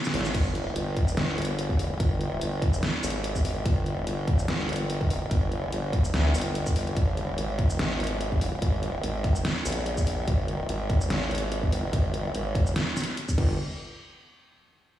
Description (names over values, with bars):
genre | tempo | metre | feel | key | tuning
heavy wobble dubstep | 145 BPM | 4/4 | swing 55% on 16ths, half-time | G phrygian | A4 = 440 Hz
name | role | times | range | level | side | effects
dubstep drum kit | drums | 0.0-13.5 s | crash cymbal, hi-hat, shaker, snare drum | -31 LUFS | equal | none
formant-sweep wobble bass | bass | 0.1-13.6 s | G1 to D2 | -28 LUFS | equal | chorus, overdrive
electronic kick drum | drums | 0.3-13.5 s | none | -26 LUFS | equal | none
room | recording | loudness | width
light reverb | played on a big sound system in a bare room, stone room reverb, small room ambience | -24 LUFS | side -13 dB against mid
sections
0.0-13.6 A section; 13.6-15.0 B section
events
break 0.0-0.3; drop 0.0-13.6; drum fill 0.0-0.3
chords
none